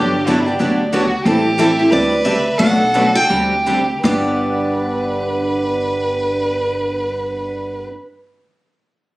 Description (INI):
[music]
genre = acoustic string swing (jazz manouche)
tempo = 156-183 BPM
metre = 4/4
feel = swing 60% on 8ths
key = G major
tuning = A4 = 440 Hz
[part]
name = picked steel-string acoustic guitar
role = melody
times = 0.0-7.8 s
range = G4 to G5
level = -20 LUFS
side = equal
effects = none
[part]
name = warm violin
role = second line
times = 0.0-7.8 s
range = D4 to B4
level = -20 LUFS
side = right 1 dB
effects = none
[part]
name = picked steel-string acoustic guitar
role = accompaniment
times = 0.0-7.9 s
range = G2 to A4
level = -20 LUFS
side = left 1 dB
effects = none
[part]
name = picked steel-string acoustic guitar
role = accompaniment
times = 0.0-7.9 s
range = G2 to B4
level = -23 LUFS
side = right 2 dB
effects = none
[part]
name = upright bass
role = bass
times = 0.0-7.8 s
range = G1 to D2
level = -23 LUFS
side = equal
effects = none
[sound]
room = moderate studio reverb, RT60 0.7 s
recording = recorded on a phone in the room, studio reverb, compression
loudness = -14 LUFS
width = side -19 dB against mid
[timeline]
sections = 0.0-1.3 A section; 1.3-4.0 B section; 4.0-7.1 C section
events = slowing down 1.3-4.0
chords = 0.0 Gmaj7; 1.3 Am7; 1.9 D9sus4; 2.6 Bm7; 3.3 D7sus4; 4.0 G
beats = 0.27 0.60 0.93 | 1.25 1.58 1.91 2.25 | 2.59 2.94 3.29 3.66 | 4.04 4.42 4.81 5.19 | 5.58 5.96 6.34 6.73